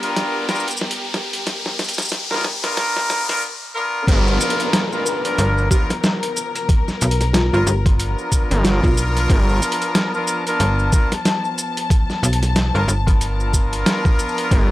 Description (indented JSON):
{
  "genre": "glitch hop",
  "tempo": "92 BPM",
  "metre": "4/4",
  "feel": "swing 59% on 16ths",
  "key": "unclear",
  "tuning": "A4 = 441 Hz",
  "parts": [
    { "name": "dark studio string section", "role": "sustained chords", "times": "0.0-14.7 s", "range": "F3 to A5", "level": "-28 LUFS", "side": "left 3 dB", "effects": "sidechain pumping" },
    { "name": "brilliant horn section", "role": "stabs", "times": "0.0-14.7 s", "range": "B3 to A#4", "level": "-23 LUFS", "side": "equal", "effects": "sidechain pumping, tape echo" },
    { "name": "boom bap sampler-style drum kit", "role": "drums", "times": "0.0-14.7 s", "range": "crash cymbal, hi-hat, shaker, snare drum", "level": "-22 LUFS", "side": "equal", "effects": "studio ambience" },
    { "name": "riser and downlifter", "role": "sound effects", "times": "0.0-9.3 s", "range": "none", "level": "-26 LUFS", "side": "left 1 dB", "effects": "none" },
    { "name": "gritty driven synth bass", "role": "bass", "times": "4.1-4.4, 8.5-9.6, 14.5-14.7 s", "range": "G1", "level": "-18 LUFS", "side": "equal", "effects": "none" },
    { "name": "electronic kick drum", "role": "drums", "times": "4.1-14.7 s", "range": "none", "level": "-16 LUFS", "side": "equal", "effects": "studio ambience" },
    { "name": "woody wave-folded pluck", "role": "melody", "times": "5.1-8.9 s", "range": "F4 to B4", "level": "-25 LUFS", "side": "equal", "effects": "lush chorus, tape echo" },
    { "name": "slap-like FM bass", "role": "bass", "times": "5.4-13.8 s", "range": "G1 to B1", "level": "-18 LUFS", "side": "equal", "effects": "tube saturation" }
  ],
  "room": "light reverb",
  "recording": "dry, gritty hardware recording, high-pass filter",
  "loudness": "-16 LUFS",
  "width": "side -16 dB against mid",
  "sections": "0.0-4.1 A section; 4.1-14.7 B section",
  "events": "build-up 0.0-4.1; drum fill 0.0-3.4; riser 0.0-3.4; break 3.4-4.1; drop 4.1-14.7",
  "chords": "0.0 G7#9",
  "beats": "0.17 0.82 | 1.47 2.12 2.77 3.43 | 4.08 4.73 5.38 6.03 | 6.69 7.34 7.99 8.64 | 9.29 9.95 10.60 11.25 | 11.90 12.56 13.21 13.86 | 14.51"
}